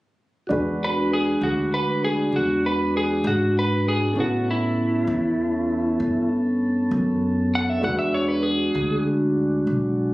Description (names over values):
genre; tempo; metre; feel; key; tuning
slow blues; 66 BPM (dotted quarters); 12/8; straight; E mixolydian; A4 = 440 Hz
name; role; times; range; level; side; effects
dark baby grand piano; accompaniment; 0.5-10.1 s; C#4 to B4; -30 LUFS; right 1 dB; none
mellow tonewheel organ; sustained chords; 0.5-10.1 s; G#3 to A4; -23 LUFS; equal; slow rotary speaker
upright bass; bass; 0.5-10.1 s; B1 to A2; -28 LUFS; equal; none
lightly driven lead guitar; melody; 0.8-9.0 s; E4 to F#5; -24 LUFS; right 1 dB; none
room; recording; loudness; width
light reverb; recorded on a phone in the room, club reverb; -20 LUFS; side -18 dB against mid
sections
0.5-10.1 A section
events
lead electric guitar solo 0.5-10.1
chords
0.5 E9; 4.2 A9; 7.8 E9